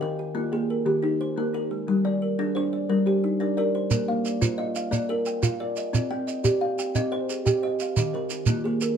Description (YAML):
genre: southern african traditional, mbira-style interlocking cycle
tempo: 118 BPM (dotted quarters)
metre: 12/8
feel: straight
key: unclear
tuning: A4 = 438 Hz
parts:
  - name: kalimba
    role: arpeggios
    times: 0.0-9.0 s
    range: Eb3 to G5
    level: -25 LUFS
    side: left 1 dB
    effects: tape echo
  - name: kalimba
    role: arpeggios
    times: 0.0-9.0 s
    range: Eb3 to G5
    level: -29 LUFS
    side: right 2 dB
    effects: none
  - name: shekere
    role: percussion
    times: 3.9-9.0 s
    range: none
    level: -25 LUFS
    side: right 4 dB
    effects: none
room: light reverb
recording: dark, warm production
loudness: -23 LUFS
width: side -7 dB against mid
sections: 0.0-9.0 A section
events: none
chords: 0.0 Eb; 1.9 Gm; 3.9 Bb; 5.9 Cm; 8.0 Eb